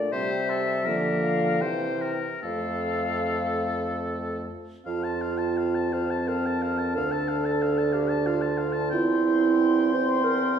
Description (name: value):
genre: classical, slow romantic movement for wind quintet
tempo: 70-95 BPM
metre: 3/4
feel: rubato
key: F major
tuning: A4 = 437 Hz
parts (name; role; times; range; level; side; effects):
- silver concert flute; melody; 0.0-10.6 s; D5 to C6; -31 LUFS; left 6 dB; none
- mellow French horn; accompaniment; 0.0-10.6 s; E3 to D4; -30 LUFS; equal; none
- warm bassoon; bass; 0.0-10.6 s; D2 to D3; -30 LUFS; right 1 dB; none
- clear oboe; second line; 0.1-10.6 s; A4 to A5; -32 LUFS; left 2 dB; none
- dark clarinet; accompaniment; 0.1-10.6 s; Bb3 to C5; -28 LUFS; right 5 dB; none
room: wet recital hall reverb, RT60 1.4 s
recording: heard from further back in the room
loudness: -23 LUFS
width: side -8 dB against mid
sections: 0.0-4.9 A section; 4.9-10.6 B section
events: none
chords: 0.1 C; 0.9 Bb/D; 1.6 C; 2.4 F; 7.0 Dm; 8.9 C/E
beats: | 0.12 0.86 1.61 | 2.44 3.27 4.07 | 4.86 5.57 6.28 | 6.96 7.62 8.27 | 8.92 9.60 10.24